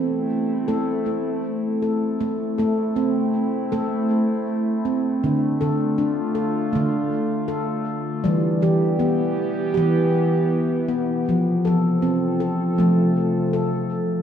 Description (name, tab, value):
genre	world meditative, meditative tuned percussion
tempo	79 BPM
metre	4/4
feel	straight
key	A minor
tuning	A4 = 441 Hz
part	warbly tape-like pad	sustained chords	0.0-14.2 s	C3 to A4	-25 LUFS	left 1 dB	chorus, built-in reverb, phaser
part	handpan	arpeggios	0.0-14.2 s	D3 to A4	-20 LUFS	equal	diffuse ambient delay
room	wet recital hall reverb, RT60 1.5 s, studio reverb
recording	none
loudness	-19 LUFS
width	side -8 dB against mid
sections	0.0-2.2 A section; 2.2-14.2 B section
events	none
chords	0.0 Am; 5.2 Dm; 8.3 Em; 11.3 F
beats	0.68 1.44 | 2.20 2.96 3.71 4.47 | 5.23 5.99 6.74 7.50 | 8.26 9.01 9.77 10.52 | 11.28 12.03 12.79 13.54